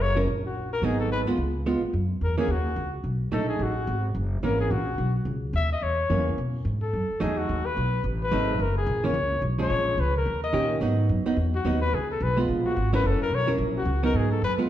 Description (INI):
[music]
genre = jazz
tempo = 216 BPM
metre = 4/4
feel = swing 59% on 8ths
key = F# mixolydian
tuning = A4 = 442 Hz
[part]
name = warm trumpet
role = melody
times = 0.0-14.5 s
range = F#4 to E5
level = -28 LUFS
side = left 3 dB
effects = none
[part]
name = upright bass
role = bass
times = 0.0-14.7 s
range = F#1 to B2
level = -26 LUFS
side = equal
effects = none
[part]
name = archtop guitar, miked and amplified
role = accompaniment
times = 0.2-14.7 s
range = D#3 to A#4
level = -28 LUFS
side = right 3 dB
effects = none
[sound]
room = wet large studio reverb, RT60 1.3 s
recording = heard from further back in the room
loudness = -23 LUFS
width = side -12 dB against mid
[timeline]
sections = 0.0-1.9 A section; 1.9-14.7 A section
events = none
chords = 0.0 F#; 0.8 G#m7; 1.4 C#7; 1.9 F#7(no3); 3.0 B7; 4.1 F#7; 6.4 B7; 8.6 F#; 9.7 A#m7; 10.3 D#7; 10.8 G#m7; 11.9 C#7; 13.0 F#7; 14.1 G#m7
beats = 0.27 0.54 | 0.82 1.10 1.37 1.65 | 1.93 2.21 2.48 2.76 | 3.04 3.32 3.59 3.87 | 4.15 4.43 4.70 4.98 | 5.26 5.54 5.82 6.09 | 6.37 6.65 6.92 7.20 | 7.48 7.76 8.04 8.31 | 8.59 8.87 9.14 9.42 | 9.70 9.98 10.26 10.53 | 10.81 11.09 11.37 11.64 | 11.92 12.20 12.48 12.75 | 13.03 13.31 13.59 13.86 | 14.14 14.42